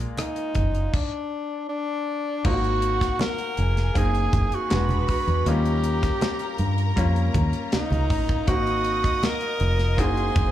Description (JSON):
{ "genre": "lush 1970s-style soul", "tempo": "80 BPM", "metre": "4/4", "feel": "straight", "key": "unclear", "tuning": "A4 = 440 Hz", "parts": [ { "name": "bright grand piano", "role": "accompaniment", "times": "0.0-10.5 s", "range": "Gb3 to D5", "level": "-30 LUFS", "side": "left 4 dB", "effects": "slapback echo" }, { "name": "fingered electric bass", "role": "bass", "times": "0.0-10.5 s", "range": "E1 to G2", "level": "-23 LUFS", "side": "equal", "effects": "none" }, { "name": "tight funk drum kit", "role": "drums", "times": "0.0-10.5 s", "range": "crash cymbal, hi-hat, kick drum, rim click, snare drum", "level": "-26 LUFS", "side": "equal", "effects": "none" }, { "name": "breathy tenor saxophone", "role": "melody", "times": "0.2-10.5 s", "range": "D4 to Bb4", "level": "-27 LUFS", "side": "equal", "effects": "slapback echo" }, { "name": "congas", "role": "percussion", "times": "0.2-10.5 s", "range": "none", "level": "-32 LUFS", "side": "right 3 dB", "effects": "none" }, { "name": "warm studio string section", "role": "second line", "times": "2.4-10.5 s", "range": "Gb4 to Eb6", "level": "-33 LUFS", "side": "equal", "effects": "slapback echo" } ], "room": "small room ambience", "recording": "live gig heard through the venue's PA, club reverb", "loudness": "-21 LUFS", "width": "side -12 dB against mid", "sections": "0.0-2.5 A section; 2.5-10.5 B section", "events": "stop 0.9-2.5", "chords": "0.0 Bb7; 2.5 Ab7; 4.7 E9; 5.5 Eb7; 8.5 Ab7", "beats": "0.19 0.94 1.70 | 2.45 3.21 3.96 4.71 | 5.47 6.22 6.97 7.73 | 8.48 9.23 9.99" }